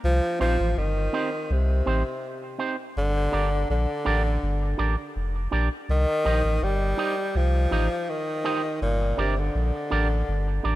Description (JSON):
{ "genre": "roots reggae", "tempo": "82 BPM", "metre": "4/4", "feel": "straight", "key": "C dorian", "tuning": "A4 = 440 Hz", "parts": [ { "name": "clear tenor saxophone", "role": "melody", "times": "0.0-10.8 s", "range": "Bb2 to G3", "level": "-27 LUFS", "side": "equal", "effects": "dub echo" }, { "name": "warm sub bass", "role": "bass", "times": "0.0-10.8 s", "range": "F1 to C2", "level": "-24 LUFS", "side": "equal", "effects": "none" }, { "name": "electric guitar with an envelope filter", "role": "accompaniment", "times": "0.4-10.8 s", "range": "C4 to Eb5", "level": "-30 LUFS", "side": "right 4 dB", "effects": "dub echo" } ], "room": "light reverb, small room reverb", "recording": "rough home demo mix", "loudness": "-22 LUFS", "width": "side -16 dB against mid", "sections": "0.0-10.8 A section", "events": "none", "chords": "0.0 Cm; 3.0 Gm; 5.9 Cm; 8.8 Gm" }